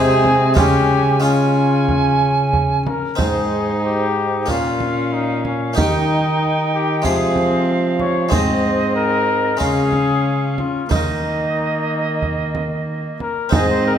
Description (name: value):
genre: classical, renaissance-style consort dance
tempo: 92 BPM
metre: 4/4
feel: straight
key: Eb mixolydian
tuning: A4 = 440 Hz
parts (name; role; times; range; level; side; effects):
- warm cornet; melody; 0.0-13.9 s; Db4 to Db5; -22 LUFS; left 5 dB; none
- soprano recorder; second line; 0.0-14.0 s; C5 to Ab5; -23 LUFS; right 6 dB; none
- harpsichord; accompaniment; 0.0-14.0 s; Ab2 to Ab4; -24 LUFS; left 1 dB; none
- warm viola; accompaniment; 0.0-14.0 s; Bb3 to Eb4; -24 LUFS; left 4 dB; none
- warm trombone; bass; 0.0-14.0 s; Ab2 to F3; -21 LUFS; right 2 dB; none
- frame drum; percussion; 0.2-13.8 s; none; -22 LUFS; right 2 dB; none
room: wet recital hall reverb, RT60 1.5 s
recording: none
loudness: -15 LUFS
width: side -9 dB against mid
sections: 0.0-3.2 A section; 3.2-13.5 B section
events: none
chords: 0.0 Ab; 0.6 Db; 3.2 Ab; 4.5 Bbm; 5.8 Eb; 7.0 Fm; 8.3 Ab; 9.6 Db; 10.9 Eb5